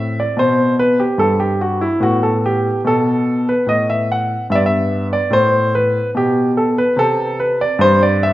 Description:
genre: classical, baroque-style suite movement for grand piano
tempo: 73 BPM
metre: 3/4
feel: rubato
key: unclear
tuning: A4 = 440 Hz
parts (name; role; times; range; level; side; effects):
- warm grand piano; solo; 0.0-8.3 s; G2 to F#5; -14 LUFS; equal; none
room: wet recital hall reverb, RT60 1.5 s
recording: none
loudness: -13 LUFS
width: side -15 dB against mid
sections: 0.0-8.3 A section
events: none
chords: 0.0 Am; 2.0 B7(no3)/A; 4.5 G69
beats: 0.38 1.19 | 2.02 2.85 3.67 | 4.49 5.30 6.12 | 6.95 7.78

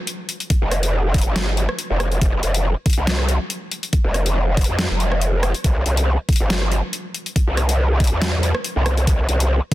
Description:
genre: heavy wobble dubstep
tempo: 140 BPM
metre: 4/4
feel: swing 54% on 16ths, half-time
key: unclear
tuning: A4 = 441 Hz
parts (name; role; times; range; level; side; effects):
- dubstep drum kit; drums; 0.1-9.7 s; hi-hat, rim click, snare drum; -24 LUFS; equal; overdrive
- electronic kick drum; drums; 0.5-9.7 s; none; -17 LUFS; equal; overdrive
- growl bass; bass; 0.6-9.6 s; F1 to F2; -18 LUFS; equal; chorus, overdrive
room: digital ambience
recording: dense, heavily limited modern master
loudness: -17 LUFS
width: side -16 dB against mid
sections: 0.0-9.7 A section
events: none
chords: none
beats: 0.07 | 0.50 0.93 1.36 1.79 | 2.21 2.64 3.07 3.50 | 3.93 4.36 4.79 5.21 | 5.64 6.07 6.50 6.93 | 7.36 7.79 8.21 8.64 | 9.07 9.50

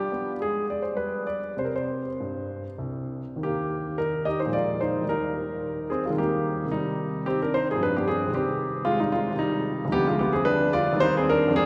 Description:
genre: classical, baroque-style suite movement for grand piano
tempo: 94-114 BPM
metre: 3/4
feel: rubato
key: Eb major from 3.4 s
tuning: A4 = 440 Hz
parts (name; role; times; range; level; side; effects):
- warm grand piano; solo; 0.0-11.7 s; C2 to Eb5; -26 LUFS; equal; none
room: wet cathedral reverb, RT60 4.3 s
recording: heard from further back in the room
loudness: -26 LUFS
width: mono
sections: 0.0-3.4 A section; 3.4-11.7 A section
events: none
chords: 0.4 N.C.; 1.6 C5; 3.4 Eb; 4.5 Bb7; 5.1 Eb; 6.7 Cm; 7.8 G7; 8.3 Cm; 9.9 G7/D; 11.0 Cm/Eb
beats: 0.38 0.95 | 1.56 2.19 2.80 | 3.40 3.97 4.52 | 5.07 5.62 6.16 | 6.70 7.24 7.78 | 8.31 8.84 9.38 | 9.91 10.45 10.99 | 11.54

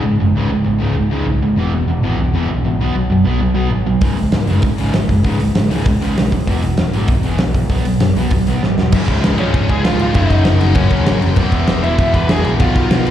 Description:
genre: punk rock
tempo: 196 BPM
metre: 4/4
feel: straight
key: unclear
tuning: A4 = 442 Hz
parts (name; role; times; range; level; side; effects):
- distorted electric guitar; riff; 0.0-13.1 s; Db2 to Cb4; -19 LUFS; right 6 dB; distortion, slapback echo
- sludgy distorted guitar; riff; 0.0-13.1 s; Db2 to Cb5; -21 LUFS; left 11 dB; overdrive, slapback echo
- overdriven picked electric bass; bass; 0.0-13.1 s; Db1 to E2; -18 LUFS; equal; none
- big rock drum kit; drums; 4.0-13.1 s; crash cymbal, hi-hat, kick drum, snare drum; -17 LUFS; equal; none
- distorted electric guitar; riff; 8.9-13.1 s; Db2 to Cb4; -24 LUFS; left 1 dB; overdrive, slapback echo
- overdriven semi-hollow guitar; melody; 9.4-13.1 s; Db4 to B5; -20 LUFS; left 1 dB; slapback echo
room: light reverb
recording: live gig heard through the venue's PA, recital hall reverb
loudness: -13 LUFS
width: side -11 dB against mid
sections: 0.0-8.9 A section; 8.9-13.1 B section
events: drum fill 8.6-8.9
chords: 0.0 Db5; 1.6 E; 2.8 Cb5; 4.0 Db5; 6.5 E5; 7.7 Cb5; 8.9 Db; 10.2 Gb; 11.4 E; 12.6 Cb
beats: 0.03 | 0.34 0.65 0.95 1.26 | 1.57 1.87 2.18 2.49 | 2.79 3.10 3.41 3.71 | 4.02 4.33 4.63 4.94 | 5.25 5.56 5.86 6.17 | 6.48 6.78 7.09 7.40 | 7.70 8.01 8.32 8.62 | 8.93 9.24 9.54 9.85 | 10.15 10.46 10.77 11.07 | 11.38 11.68 11.99 12.29 | 12.60 12.91

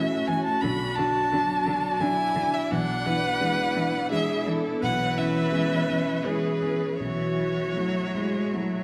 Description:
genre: neoclassical piano and strings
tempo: 85 BPM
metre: 3/4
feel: uneven beats, rubato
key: B dorian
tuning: A4 = 439 Hz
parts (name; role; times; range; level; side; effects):
- rich violin; melody; 0.0-8.8 s; B4 to B5; -30 LUFS; equal; none
- clear viola; accompaniment; 0.0-8.8 s; D4 to B4; -33 LUFS; equal; none
- felt-muted upright piano; accompaniment; 0.0-8.8 s; B1 to F#4; -32 LUFS; equal; none
- clear studio string section; sustained chords; 0.0-8.8 s; F#3 to E5; -38 LUFS; equal; none
- rich cello; second line; 0.3-8.8 s; D3 to G#3; -32 LUFS; equal; none
room: moderate scoring stage reverb, RT60 2.0 s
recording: dark, warm production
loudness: -26 LUFS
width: mono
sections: 0.0-8.8 A section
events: none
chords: 0.0 F#m7/B; 0.6 Bm7; 2.7 E7/B; 4.8 C#m7/B; 7.0 F#m7/B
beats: | 0.62 1.32 2.01 | 2.70 3.40 4.11 | 4.81 5.51 6.24 | 7.00 7.77 8.54

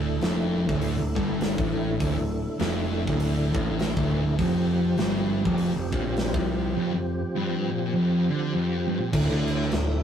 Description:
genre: stoner and doom metal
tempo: 101 BPM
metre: 4/4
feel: swing 59% on 8ths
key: D minor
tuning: A4 = 441 Hz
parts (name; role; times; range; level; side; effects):
- tonewheel organ; sustained chords; 0.0-10.0 s; D3 to G4; -30 LUFS; equal; slow rotary speaker, chorus vibrato
- thick fuzz guitar; riff; 0.0-10.0 s; D2 to D3; -30 LUFS; left 6 dB; distortion
- thick fuzz guitar; riff; 0.0-10.0 s; D2 to D3; -28 LUFS; right 4 dB; distortion
- modern bright picked electric bass; bass; 0.0-10.0 s; D1 to D2; -30 LUFS; equal; overdrive
- big rock drum kit; drums; 0.2-9.9 s; crash cymbal, hi-hat, kick drum, snare drum; -30 LUFS; equal; none
room: moderate stone room reverb, RT60 1.0 s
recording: rough rehearsal-room recording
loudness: -23 LUFS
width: side -8 dB against mid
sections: 0.0-9.1 A section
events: none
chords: 0.0 Dm; 4.4 F5; 9.1 D5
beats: 0.21 0.81 1.41 | 2.00 2.60 3.19 3.79 | 4.38 4.98 5.57 6.17 | 6.76 7.36 7.95 8.54 | 9.14 9.73

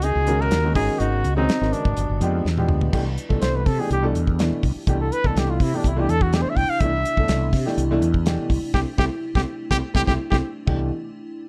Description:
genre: electric jazz fusion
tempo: 124 BPM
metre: 4/4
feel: straight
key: C major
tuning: A4 = 439 Hz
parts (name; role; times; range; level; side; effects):
- mellow trumpet; melody; 0.0-10.4 s; D4 to G5; -27 LUFS; equal; none
- vintage hollow-body jazz guitar; second line; 0.0-2.2 s; B3 to Gb4; -32 LUFS; equal; none
- warm concert grand piano; accompaniment; 0.0-10.9 s; B2 to C5; -29 LUFS; equal; none
- icy glass pad; sustained chords; 0.0-10.9 s; C3 to B4; -35 LUFS; equal; chorus, built-in reverb
- mellow fretless electric bass; bass; 0.0-10.9 s; G1 to C3; -25 LUFS; equal; ensemble chorus
- damped 70s drum kit; drums; 0.0-10.8 s; china cymbal, crash cymbal, hi-hat, kick drum, snare drum, toms; -26 LUFS; equal; none
room: light reverb, studio ambience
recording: dark, warm production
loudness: -21 LUFS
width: mono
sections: 0.0-2.9 A section; 2.9-10.7 B section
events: drum fill 2.5-2.9; trumpet solo 2.9-10.7; band accent 8.7-10.7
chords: 0.0 Db9sus4; 0.8 Ab9sus4; 2.0 G7b9; 2.9 C69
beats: 0.03 0.51 | 1.00 1.48 1.97 2.45 | 2.94 3.42 3.90 4.39 | 4.87 5.36 5.84 6.32 | 6.81 7.29 7.77 8.26 | 8.74 9.22 9.71 10.19 | 10.67

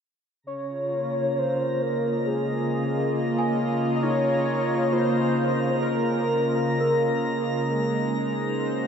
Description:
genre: ambient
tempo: 67 BPM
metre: 4/4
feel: straight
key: Db major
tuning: A4 = 440 Hz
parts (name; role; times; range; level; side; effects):
- warm analog pad; sustained chords; 0.4-8.9 s; Db3 to Eb5; -26 LUFS; equal; chorus, tremolo
- analog drone; drone; 1.7-8.9 s; Db3; -33 LUFS; left 1 dB; chorus
- drifting glass-harmonics texture; texture; 0.9-8.9 s; Bb5 to Bb6; -35 LUFS; left 2 dB; chorus, built-in reverb
- warm velvety synth lead; melody; 0.5-7.1 s; Ab4 to Eb5; -27 LUFS; equal; chorus, diffuse ambient delay
- celesta; arpeggios; 3.4-8.9 s; Eb4 to Ab5; -30 LUFS; right 1 dB; diffuse ambient delay
room: wet cathedral reverb, RT60 5.1 s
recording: dark, warm production, nothing above 7.9 kHz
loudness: -22 LUFS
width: side -7 dB against mid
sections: 0.5-8.9 A section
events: none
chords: 0.5 Db69; 7.6 Ab7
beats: | 0.46 1.35 2.25 3.14 | 4.04 4.93 5.83 6.72 | 7.62 8.52

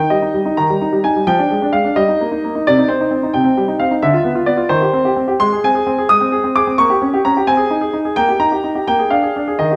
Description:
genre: classical-period piano sonatina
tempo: 87 BPM (dotted quarters)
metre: 6/8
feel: straight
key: Eb major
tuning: A4 = 440 Hz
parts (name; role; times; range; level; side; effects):
- clear grand piano; solo; 0.0-9.8 s; C3 to Eb6; -15 LUFS; equal; none
room: wet recital hall reverb, RT60 1.6 s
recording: dark, warm production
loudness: -15 LUFS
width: mono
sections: 0.0-9.8 A section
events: none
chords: 0.0 Eb; 1.3 Ddim/F; 2.0 Eb/G; 2.7 Cm; 4.0 Bdim/D; 4.7 Cm/Eb; 5.4 Ab; 6.8 Gdim/Bb; 7.5 Ab/C; 8.2 Eb/Bb; 8.9 Bb7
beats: 0.57 | 1.27 1.96 | 2.65 3.34 | 4.02 4.71 | 5.39 6.08 | 6.77 7.46 | 8.15 8.86 | 9.59

